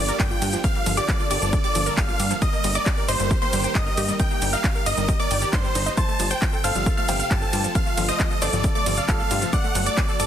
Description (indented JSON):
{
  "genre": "uplifting trance",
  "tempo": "135 BPM",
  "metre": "4/4",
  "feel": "straight",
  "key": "unclear",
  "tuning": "A4 = 438 Hz",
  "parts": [
    { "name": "supersaw chords", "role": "melody", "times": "0.0-10.3 s", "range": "C5 to A5", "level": "-26 LUFS", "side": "right 1 dB", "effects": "sidechain pumping, ping-pong delay" },
    { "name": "wide unison pluck", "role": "second line", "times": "0.0-10.3 s", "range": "C6 to A6", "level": "-33 LUFS", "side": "equal", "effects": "none" },
    { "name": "lush unison pad", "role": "sustained chords", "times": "0.0-10.3 s", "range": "C3 to Bb4", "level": "-32 LUFS", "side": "right 1 dB", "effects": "chorus, phaser, sidechain pumping" },
    { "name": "wide unison pluck", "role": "arpeggios", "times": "0.0-10.3 s", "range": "F3 to G5", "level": "-31 LUFS", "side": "equal", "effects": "sidechain pumping, ping-pong delay" },
    { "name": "plucky analog bass", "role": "bass", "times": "0.0-10.3 s", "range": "G1 to G2", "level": "-27 LUFS", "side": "equal", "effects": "sidechain pumping" },
    { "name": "techno drum kit", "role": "drums", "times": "0.1-10.3 s", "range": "handclaps, hi-hat, ride cymbal, shaker", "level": "-28 LUFS", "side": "equal", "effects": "sidechain pumping on hats, sidechain pumping on perc, sidechain pumping on cymbals" },
    { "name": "electronic kick drum", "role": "drums", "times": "0.2-10.1 s", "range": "none", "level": "-24 LUFS", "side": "equal", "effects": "none" },
    { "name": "felt-muted upright piano", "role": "second line", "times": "6.0-10.3 s", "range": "G4 to D6", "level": "-32 LUFS", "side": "equal", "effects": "digital delay" }
  ],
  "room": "light reverb",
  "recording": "dense, heavily limited modern master",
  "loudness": "-19 LUFS",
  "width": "side -10 dB against mid",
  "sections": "0.0-10.3 A section",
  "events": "none",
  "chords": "0.0 Gm7; 2.4 Eb/G; 6.0 F/G; 9.5 D"
}